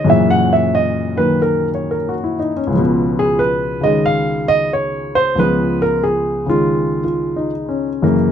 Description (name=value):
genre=solo jazz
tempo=91 BPM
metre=4/4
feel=swing 66% on 8ths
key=Db mixolydian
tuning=A4 = 437 Hz
part: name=warm grand piano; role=solo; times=0.0-8.3 s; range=Db2 to Gb5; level=-14 LUFS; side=equal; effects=none
room=light reverb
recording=close, detailed microphones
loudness=-14 LUFS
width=side -9 dB against mid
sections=0.0-8.3 A section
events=grand piano solo 0.0-8.3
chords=0.1 Gb7; 2.7 Db7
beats=| 0.07 0.73 1.40 2.06 | 2.72 3.38 4.05 4.71 | 5.37 6.03 6.70 7.36 | 8.02